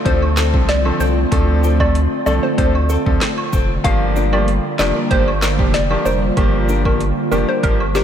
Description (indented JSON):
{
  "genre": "dancehall",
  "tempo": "95 BPM",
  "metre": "4/4",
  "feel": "straight",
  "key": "G minor",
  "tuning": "A4 = 442 Hz",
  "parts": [
    { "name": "hollow soft pad", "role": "sustained chords", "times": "0.0-8.0 s", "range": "D3 to F4", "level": "-23 LUFS", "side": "equal", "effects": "ensemble chorus, sidechain pumping" },
    { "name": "flamenco guitar", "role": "arpeggios", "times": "0.0-8.0 s", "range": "C4 to Bb4", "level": "-27 LUFS", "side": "left 5 dB", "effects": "wide subtle chorus" },
    { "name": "hollow square pluck", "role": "melody", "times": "0.1-8.0 s", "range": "G4 to F5", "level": "-22 LUFS", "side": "equal", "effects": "chorus, ping-pong delay" },
    { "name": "clear concert grand piano", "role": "accompaniment", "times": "0.1-7.8 s", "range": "F3 to A4", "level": "-22 LUFS", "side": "equal", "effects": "sidechain pumping" },
    { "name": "saturated sub bass", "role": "bass", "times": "0.1-8.0 s", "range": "F1 to D2", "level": "-18 LUFS", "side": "equal", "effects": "none" },
    { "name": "afro-pop drum kit", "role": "drums", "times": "0.1-8.0 s", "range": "handclaps, hi-hat, kick drum, snare drum", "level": "-20 LUFS", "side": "equal", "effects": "none" },
    { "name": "woodblock and cabasa", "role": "percussion", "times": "0.2-8.0 s", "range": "none", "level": "-30 LUFS", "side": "right 3 dB", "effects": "none" }
  ],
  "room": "moderate cathedral reverb, RT60 5.5 s",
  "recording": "dreamy mix soaked in reverb",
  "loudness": "-14 LUFS",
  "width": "side -9 dB against mid",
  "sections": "0.0-8.0 A section",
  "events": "none",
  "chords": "0.0 Dm7; 3.8 Gm7"
}